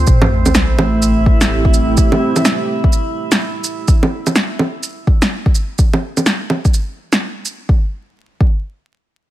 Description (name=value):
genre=future garage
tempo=126 BPM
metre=4/4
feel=swing 62% on 16ths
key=unclear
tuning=A4 = 438 Hz
part: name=dark analog pad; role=sustained chords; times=0.0-3.9 s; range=A3 to C5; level=-19 LUFS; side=right 2 dB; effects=chorus, vintage 12-bit sampler grit, sidechain pumping
part: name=soft dub sub bass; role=bass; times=0.0-2.0 s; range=A1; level=-16 LUFS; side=equal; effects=tube saturation, sidechain pumping
part: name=drifting glass-harmonics texture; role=texture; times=0.0-3.9 s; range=E4 to E5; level=-24 LUFS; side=right 2 dB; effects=chorus, built-in reverb
part: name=electronic kick drum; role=drums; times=0.1-8.6 s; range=none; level=-12 LUFS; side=equal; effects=overdrive
part: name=electronic shaker, bongos and snare drum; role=drums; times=0.1-7.6 s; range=none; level=-16 LUFS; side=right 1 dB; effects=overdrive
part: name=sub drop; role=sound effects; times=0.1-2.0 s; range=none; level=-22 LUFS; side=equal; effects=none
room=light reverb, digital ambience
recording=vinyl crackle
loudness=-13 LUFS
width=side -14 dB against mid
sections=0.1-7.7 A section; 7.7-9.3 B section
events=impact 0.1-2.0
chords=0.1 Am7; 7.7 N.C.